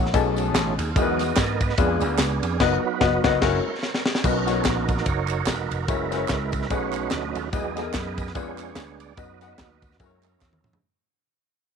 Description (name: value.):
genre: uptempo gospel.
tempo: 146 BPM.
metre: 4/4.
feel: swing 57% on 8ths.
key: B major.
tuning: A4 = 436 Hz.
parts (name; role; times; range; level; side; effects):
warm baby grand piano; accompaniment; 0.0-10.7 s; B2 to F#5; -26 LUFS; left 12 dB; none.
tonewheel organ; sustained chords; 0.0-10.8 s; F#3 to E5; -28 LUFS; right 12 dB; fast rotary speaker, overdrive, chorus vibrato.
vintage slap bass; bass; 0.0-10.8 s; E1 to G#2; -28 LUFS; equal; none.
tight funk drum kit; drums; 0.1-10.8 s; crash cymbal, kick drum, ride cymbal, snare drum, toms; -26 LUFS; equal; none.
tambourine and handclaps; percussion; 0.1-10.7 s; none; -36 LUFS; right 7 dB; none.
room: light reverb, small room ambience.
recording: 1960s-style stereo with parts hard left and right.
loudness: -21 LUFS.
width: side -6 dB against mid.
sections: 0.0-4.2 A section; 4.2-10.8 B section.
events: tonewheel organ solo 0.0-4.2, 4.2-10.8; band accent 2.6-4.2; drum fill 3.8-4.2, 10.4-10.8; fade-out 4.2-10.8.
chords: 0.1 B13; 1.0 Emaj7; 1.8 Fdim7; 2.6 B/F#; 3.4 F#7; 4.2 Bmaj7; 5.9 F#7; 6.7 B13; 7.5 Emaj7; 8.4 Fdim7; 9.2 B/F#; 10.0 F#7.